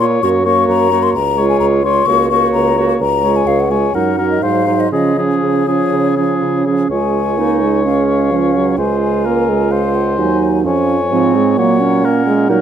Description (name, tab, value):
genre	quick classical-period movement for wind quintet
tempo	129 BPM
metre	4/4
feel	rubato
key	Db major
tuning	A4 = 442 Hz
part	mellow hollow concert flute	melody	0.0-12.6 s	Db5 to Db6	-19 LUFS	left 9 dB	none
part	mellow oboe	second line	0.0-12.6 s	Ab4 to Db5	-19 LUFS	left 4 dB	none
part	clear French horn	accompaniment	0.0-12.6 s	F3 to Bb3	-18 LUFS	equal	none
part	clear clarinet	accompaniment	0.0-12.6 s	Bb3 to Gb4	-17 LUFS	right 8 dB	none
part	dark bassoon	bass	0.0-12.6 s	Db2 to Db3	-18 LUFS	right 2 dB	none
room	moderate recital hall reverb, RT60 1.8 s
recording	close, detailed microphones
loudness	-12 LUFS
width	side -9 dB against mid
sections	0.0-6.9 A section; 6.9-12.6 B section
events	none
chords	0.2 Gb; 1.2 Db; 2.1 Gb/Db; 3.0 Db; 3.9 Ebm/Gb; 4.4 Ab7; 4.9 Db; 10.7 Db/F; 11.6 Gb/Bb